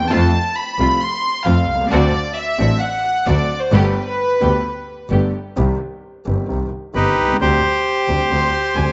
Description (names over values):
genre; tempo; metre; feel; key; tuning
tango; 132 BPM; 4/4; rubato; C harmonic minor from 5.6 s; A4 = 440 Hz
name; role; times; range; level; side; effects
warm studio violin section; second line; 0.0-5.1, 8.3-8.9 s; B4 to C6; -22 LUFS; equal; none
warm concert grand piano; accompaniment; 0.0-8.9 s; G1 to A4; -25 LUFS; equal; none
clear double bass; bass; 0.0-8.9 s; G1 to F2; -21 LUFS; equal; none
warm studio string section; stabs; 0.1-5.3 s; A3 to G4; -28 LUFS; equal; none
bandoneon; melody; 6.9-8.9 s; Eb4 to C5; -18 LUFS; equal; none
room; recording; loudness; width
moderate plate reverb, RT60 2.2 s; nothing above 7.7 kHz; -18 LUFS; mono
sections
0.0-5.6 A section; 5.6-8.9 B section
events
violin section solo 0.0-5.6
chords
0.1 F; 1.9 D7; 3.7 Gadd9; 5.6 Cm; 7.4 Gsus4/D